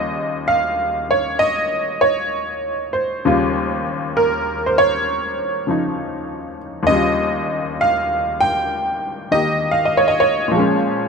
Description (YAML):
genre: solo jazz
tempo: 66 BPM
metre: 4/4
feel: swing 67% on 8ths, rubato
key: Eb mixolydian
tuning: A4 = 439 Hz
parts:
  - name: honky-tonk upright piano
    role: solo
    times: 0.0-11.1 s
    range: Eb2 to G5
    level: -17 LUFS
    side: equal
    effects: none
room: light reverb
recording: close, detailed microphones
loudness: -16 LUFS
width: side -5 dB against mid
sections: 0.0-11.1 A section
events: none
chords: 0.0 Eb9; 10.5 Bbm7